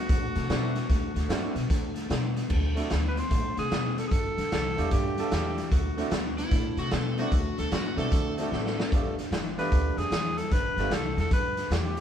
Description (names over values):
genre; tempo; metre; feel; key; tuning
electric blues shuffle; 150 BPM; 4/4; swing 65% on 8ths; D mixolydian; A4 = 441 Hz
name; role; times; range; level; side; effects
warm tenor saxophone; melody; 0.0-6.5, 9.6-12.0 s; F#4 to C5; -32 LUFS; equal; none
electric guitar through a small old amp; riff; 0.0-12.0 s; G2 to B3; -33 LUFS; left 4 dB; none
upright bass; bass; 0.1-12.0 s; G1 to D3; -31 LUFS; equal; none
raw garage drum kit; drums; 0.1-12.0 s; crash cymbal, hi-hat, kick drum, snare drum; -29 LUFS; equal; none
clear upright piano; accompaniment; 0.5-10.9 s; A3 to A4; -33 LUFS; right 4 dB; none
overdriven slide guitar; second line; 6.4-9.1 s; E4 to A4; -34 LUFS; equal; none
room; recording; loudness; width
moderate studio reverb, RT60 0.6 s; band playing live in one room; -25 LUFS; side -9 dB against mid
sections
0.0-2.5 A section; 2.5-12.0 A section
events
drum fill 8.5-8.9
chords
0.0 D7; 2.5 D7(no3); 4.1 G7; 5.7 D7; 8.9 G7